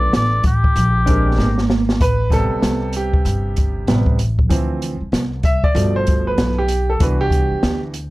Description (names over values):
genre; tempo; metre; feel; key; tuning
hip hop, jazz-hop; 96 BPM; 4/4; swing 62% on 16ths; unclear; A4 = 440 Hz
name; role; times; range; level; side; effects
trumpet with cup mute; melody; 0.0-1.7 s; G4 to D5; -20 LUFS; left 1 dB; none
clear concert grand piano; accompaniment; 0.0-7.9 s; B2 to E5; -21 LUFS; right 2 dB; none
upright bass; bass; 0.0-8.1 s; G1 to D2; -20 LUFS; equal; tube saturation
open jazz drum kit; drums; 0.1-8.1 s; hi-hat, kick drum, snare drum; -18 LUFS; equal; none
mellow electric guitar; second line; 1.1-2.0 s; Bb3 to D4; -24 LUFS; right 2 dB; phaser, tape echo
room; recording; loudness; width
little or no reverb; dry, gritty hardware recording; -15 LUFS; side -19 dB against mid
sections
0.0-2.0 A section; 2.0-8.1 B section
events
drum fill 1.4-2.0; grand piano solo 2.0-8.1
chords
0.0 Bm7b5; 0.8 Bb13; 2.0 Am9; 4.5 Dm9; 5.8 G7; 7.0 Cmaj9#11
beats
0.13 0.76 1.38 | 2.01 2.63 3.26 3.88 | 4.51 5.13 5.76 6.38 | 7.01 7.63